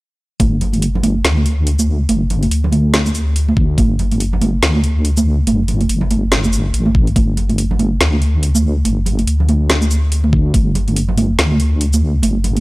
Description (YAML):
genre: deep dubstep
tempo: 142 BPM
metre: 4/4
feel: swing 59% on 16ths, half-time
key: unclear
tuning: A4 = 440 Hz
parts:
  - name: deep soft wobble bass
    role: bass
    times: 0.4-12.6 s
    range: G1 to D2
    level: -15 LUFS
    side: equal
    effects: chorus, tube saturation
  - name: electronic kick drum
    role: drums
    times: 0.4-0.5, 3.6-3.9, 6.9-7.3, 10.3-10.6 s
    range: none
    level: -15 LUFS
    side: equal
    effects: overdrive
  - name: garage drum kit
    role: drums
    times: 0.4-12.6 s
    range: hi-hat, shaker, snare drum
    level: -19 LUFS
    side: equal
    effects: overdrive
  - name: congas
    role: percussion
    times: 0.4-12.6 s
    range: none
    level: -19 LUFS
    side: right 2 dB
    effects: dub echo
room: little or no reverb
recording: dry, gritty hardware recording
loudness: -13 LUFS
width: side -20 dB against mid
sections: 0.4-12.6 A section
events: kick drops out 12.2-12.6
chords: none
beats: | 0.40 0.82 1.25 1.67 | 2.09 2.51 2.94 3.36 | 3.78 4.20 4.62 5.05 | 5.47 5.89 6.32 6.74 | 7.16 7.58 8.01 8.43 | 8.85 9.27 9.70 10.12 | 10.54 10.96 11.39 11.81 | 12.23